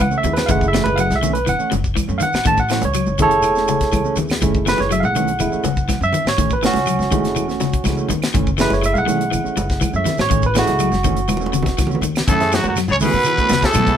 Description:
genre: afrobeat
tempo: 122 BPM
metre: 4/4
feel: straight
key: F# dorian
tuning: A4 = 438 Hz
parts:
  - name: barky tine electric piano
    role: accompaniment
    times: 0.0-14.0 s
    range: G#3 to A5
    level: -19 LUFS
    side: right 2 dB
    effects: none
  - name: electric guitar at the edge of break-up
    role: arpeggios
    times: 0.0-13.9 s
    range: C#3 to F#3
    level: -24 LUFS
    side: left 8 dB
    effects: spring reverb
  - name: upright bass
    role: bass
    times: 0.0-14.0 s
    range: E1 to D#3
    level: -23 LUFS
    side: equal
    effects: none
  - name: tight funk drum kit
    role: drums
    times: 0.0-14.0 s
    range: hi-hat, kick drum, snare drum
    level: -22 LUFS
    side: left 1 dB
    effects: none
  - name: claves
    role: percussion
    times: 0.0-13.9 s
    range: none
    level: -34 LUFS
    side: right 9 dB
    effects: none
  - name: congas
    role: percussion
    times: 0.0-14.0 s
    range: none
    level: -26 LUFS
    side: right 2 dB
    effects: none
  - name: mellow electric guitar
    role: stabs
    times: 0.1-13.9 s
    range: E3 to C#4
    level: -26 LUFS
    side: right 9 dB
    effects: none
  - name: shekere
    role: percussion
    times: 0.1-14.0 s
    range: none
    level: -30 LUFS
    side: right 4 dB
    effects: none
  - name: growling trumpet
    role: melody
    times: 12.3-14.0 s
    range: F#4 to C#5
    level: -18 LUFS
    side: right 1 dB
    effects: none
  - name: raspy baritone saxophone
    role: second line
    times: 12.3-14.0 s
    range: F#2 to C#3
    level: -26 LUFS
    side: left 4 dB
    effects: none
  - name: trombone with metal mute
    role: second line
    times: 12.3-14.0 s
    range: F#3 to C#4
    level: -27 LUFS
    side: right 4 dB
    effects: none
room: moderate studio ambience, RT60 0.5 s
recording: band playing live in one room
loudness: -15 LUFS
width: side -9 dB against mid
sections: 0.0-12.3 A section; 12.3-14.0 B section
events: tine electric piano solo 0.0-12.3; drum fill 11.3-12.3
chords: 0.0 F#m7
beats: 0.00 | 0.49 0.98 1.48 1.97 | 2.46 2.95 3.44 3.93 | 4.42 4.91 5.41 5.90 | 6.39 6.88 7.37 7.86 | 8.35 8.84 9.33 9.82 | 10.31 10.80 11.29 11.79 | 12.27 12.76 13.25 13.74

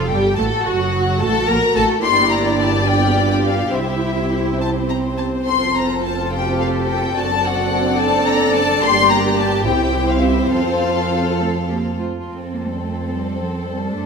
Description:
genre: quick classical-period movement for string orchestra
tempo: 71 BPM (dotted quarters)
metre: 6/8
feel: straight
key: F major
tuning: A4 = 440 Hz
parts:
  - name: warm symphonic violin section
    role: melody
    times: 0.0-14.1 s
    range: C5 to C6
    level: -21 LUFS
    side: left 6 dB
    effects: none
  - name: warm symphonic violin section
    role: second line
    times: 0.0-14.1 s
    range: C4 to D5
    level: -22 LUFS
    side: left 3 dB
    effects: none
  - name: dark symphonic viola section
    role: accompaniment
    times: 0.0-14.1 s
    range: Gb3 to F4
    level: -22 LUFS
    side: right 2 dB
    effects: none
  - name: dark chamber cello section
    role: bass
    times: 0.0-14.1 s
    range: F3 to A4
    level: -24 LUFS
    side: right 3 dB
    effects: none
  - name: warm symphonic double bass section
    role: bass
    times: 0.0-14.1 s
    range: F1 to F#2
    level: -23 LUFS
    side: right 3 dB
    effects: none
room: wet recital hall reverb, RT60 1.5 s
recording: none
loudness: -15 LUFS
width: side -5 dB against mid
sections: 0.0-12.3 A section; 12.3-14.1 A section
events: none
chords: 0.4 Gbm; 2.0 Gm; 2.9 G7; 3.7 C; 5.5 F; 7.2 D7/F#; 8.8 Gm; 9.7 C; 10.5 F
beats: | 0.38 1.21 | 2.04 2.88 | 3.73 4.61 | 5.48 6.33 | 7.17 8.00 | 8.83 9.67 | 10.53 11.39 | 12.26 13.11 | 13.94

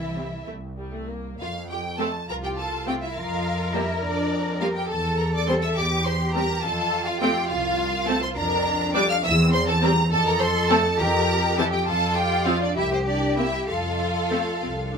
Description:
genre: quick classical-period movement for string orchestra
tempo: 68 BPM (dotted quarters)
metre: 6/8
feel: straight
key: F major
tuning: A4 = 440 Hz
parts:
  - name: rich studio violin section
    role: melody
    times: 0.0-15.0 s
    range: C5 to F6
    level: -27 LUFS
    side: right 1 dB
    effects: none
  - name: warm symphonic violin section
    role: second line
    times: 0.0-15.0 s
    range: C4 to F5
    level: -28 LUFS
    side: left 1 dB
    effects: none
  - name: clear symphonic double bass section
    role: bass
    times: 0.0-15.0 s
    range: C2 to F2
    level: -27 LUFS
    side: equal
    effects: none
  - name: rich symphonic cello section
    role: bass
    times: 0.0-15.0 s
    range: E3 to Bb4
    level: -28 LUFS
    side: equal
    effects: none
  - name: rich symphonic viola section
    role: accompaniment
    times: 0.2-15.0 s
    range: E3 to D4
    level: -26 LUFS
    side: equal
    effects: none
room: light reverb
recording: minimal, uncompressed stereo recording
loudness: -21 LUFS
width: side -6 dB against mid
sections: 0.0-1.4 A section; 1.4-15.0 B section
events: none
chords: 0.0 C; 1.4 F; 3.2 Gm7/F; 4.9 C/E; 6.6 F; 8.4 Gm7/F; 9.2 C/E; 10.1 F; 11.0 C7/F; 11.9 F5; 12.8 C5; 13.7 F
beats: 0.47 | 1.40 2.29 | 3.16 4.03 | 4.90 5.77 | 6.64 7.50 | 8.36 9.24 | 10.11 10.99 | 11.87 12.76 | 13.69 14.61

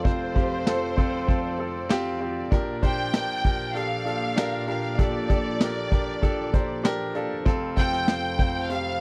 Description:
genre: piano-driven pop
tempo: 97 BPM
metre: 4/4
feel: straight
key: unclear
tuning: A4 = 439 Hz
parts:
  - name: warm studio violin section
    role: melody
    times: 0.0-9.0 s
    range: C5 to G5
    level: -32 LUFS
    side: equal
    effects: slapback echo
  - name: clear baby grand piano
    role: accompaniment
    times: 0.0-9.0 s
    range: F1 to Bb5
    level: -30 LUFS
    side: equal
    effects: none
  - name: warm studio string section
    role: sustained chords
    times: 0.0-9.0 s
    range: F2 to D5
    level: -37 LUFS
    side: equal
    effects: none
  - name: vintage brush drum kit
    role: drums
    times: 0.1-8.8 s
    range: hi-hat, kick drum, snare drum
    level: -26 LUFS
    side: equal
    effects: none
room: light reverb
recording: dry, close 1970s-style studio recording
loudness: -25 LUFS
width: mono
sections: 0.0-9.0 A section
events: grand piano fill 6.2-7.5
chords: 0.0 F; 2.5 Bb6; 7.5 F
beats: | 0.05 0.67 1.29 1.90 | 2.52 3.14 3.75 4.37 | 4.99 5.61 6.22 6.84 | 7.46 8.08 8.70

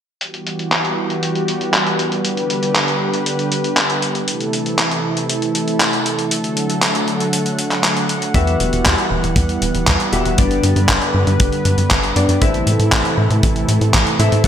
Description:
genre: italo disco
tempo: 118 BPM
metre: 4/4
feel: straight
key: E minor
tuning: A4 = 437 Hz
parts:
  - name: warm analog pad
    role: sustained chords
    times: 0.2-14.5 s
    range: C3 to F#5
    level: -20 LUFS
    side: right 1 dB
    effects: chorus
  - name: dusty soul sampler-style drum kit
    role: drums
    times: 0.2-14.5 s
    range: handclaps, hi-hat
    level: -19 LUFS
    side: equal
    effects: overdrive, low-pass filter on hats, low-pass filter on snare, low-pass filter on room, gated reverb
  - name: warm grand piano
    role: stabs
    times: 8.3-14.5 s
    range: B3 to E5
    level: -22 LUFS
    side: left 4 dB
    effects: analog chorus, digital delay
  - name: tight sequencer bass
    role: bass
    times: 8.3-14.5 s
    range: E1 to A2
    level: -18 LUFS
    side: equal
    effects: tube saturation
  - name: kick drum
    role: drums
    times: 8.3-14.5 s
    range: none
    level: -17 LUFS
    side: equal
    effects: none
room: moderate plate reverb, RT60 1.6 s, studio reverb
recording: bright 1980s-style digital production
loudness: -14 LUFS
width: side -9 dB against mid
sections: 0.2-14.5 A section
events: none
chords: 0.2 Emadd9; 2.2 G; 4.3 Am; 6.3 D; 8.3 Emadd9; 10.4 G; 12.4 Am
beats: | 0.21 0.72 1.23 1.74 | 2.24 2.75 3.26 3.77 | 4.28 4.79 5.29 5.80 | 6.31 6.82 7.33 7.84 | 8.35 8.85 9.36 9.87 | 10.38 10.89 11.40 11.90 | 12.41 12.92 13.43 13.94 | 14.45

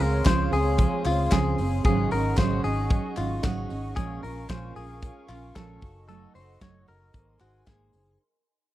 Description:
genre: jangly indie pop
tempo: 113 BPM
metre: 4/4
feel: straight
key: unclear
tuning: A4 = 438 Hz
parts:
  - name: picked steel-string acoustic guitar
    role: accompaniment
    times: 0.0-8.2 s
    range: Ab2 to Db5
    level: -30 LUFS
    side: right 6 dB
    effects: none
  - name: hollow soft pad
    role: sustained chords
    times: 0.0-8.2 s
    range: Ab4 to Db6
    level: -36 LUFS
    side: equal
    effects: chorus
  - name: direct-recorded clean electric guitar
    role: arpeggios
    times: 0.0-8.2 s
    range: F4 to Db5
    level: -31 LUFS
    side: left 4 dB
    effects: vibrato effect
  - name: vintage muted fingered electric bass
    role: bass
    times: 0.0-8.2 s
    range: Gb1 to Db2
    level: -29 LUFS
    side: equal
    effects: none
  - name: modern studio drum kit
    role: drums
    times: 0.0-8.1 s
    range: hi-hat, kick drum, snare drum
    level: -23 LUFS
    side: equal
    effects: none
  - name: group handclap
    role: percussion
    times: 0.3-7.8 s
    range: none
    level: -41 LUFS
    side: left 4 dB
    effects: none
room: studio ambience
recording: dry, close 1970s-style studio recording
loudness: -22 LUFS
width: side -14 dB against mid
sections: 0.0-8.2 A section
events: fade-out 0.0-8.2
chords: 0.0 Dbmaj7; 1.8 Ab7sus4; 4.0 Bbm7; 5.8 Gbm6; 7.1 Abadd9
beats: 0.26 0.79 1.32 | 1.85 2.38 2.91 3.44 | 3.97 4.50 5.03 5.56 | 6.09 6.62 7.14 7.67

